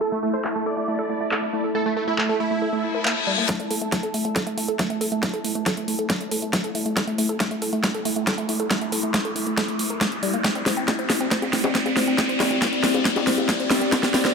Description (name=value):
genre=psychedelic trance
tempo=138 BPM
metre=4/4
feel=straight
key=A minor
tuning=A4 = 438 Hz
part: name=supersaw stab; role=melody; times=0.0-3.4 s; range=A3 to D5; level=-27 LUFS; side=right 3 dB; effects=phaser, sidechain pumping, dub echo
part: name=pulsing gated texture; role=sustained chords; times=0.0-14.3 s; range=A3 to E4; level=-29 LUFS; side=left 2 dB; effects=chorus, built-in reverb, sidechain pumping
part: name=woody wave-folded pluck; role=riff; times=0.0-14.3 s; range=G3 to C5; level=-28 LUFS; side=moving between left 4 dB and right 8 dB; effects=chorus, auto-pan, sidechain pumping, dub echo
part: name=warbly tape-like pad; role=texture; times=0.0-14.3 s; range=C4 to A5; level=-29 LUFS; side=left 2 dB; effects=chorus, built-in reverb, sidechain pumping
part: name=big-room dance drum kit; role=drums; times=0.4-14.3 s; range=bongos, handclaps, hi-hat, snare drum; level=-24 LUFS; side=equal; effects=overdrive
part: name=reverse cymbal and riser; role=sound effects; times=2.8-14.3 s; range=none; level=-30 LUFS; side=left 2 dB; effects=none
part: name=electronic kick drum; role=drums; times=3.5-14.0 s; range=none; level=-25 LUFS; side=equal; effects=high-pass filter on kick
room=moderate plate reverb, RT60 2.0 s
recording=low-pass filter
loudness=-20 LUFS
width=side -5 dB against mid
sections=0.0-3.5 A section; 3.5-14.3 B section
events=filter sweep on drum 0.0-3.5; filter sweep 0.0-3.5; reverse cymbal 2.8-3.5; build-up 3.5-14.3; drum fill 3.5-14.3; riser 3.5-14.3; filter sweep on synth arpeggio sound 3.5-14.3; filter sweep on synth texture 3.5-14.3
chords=0.0 A5; 10.4 C5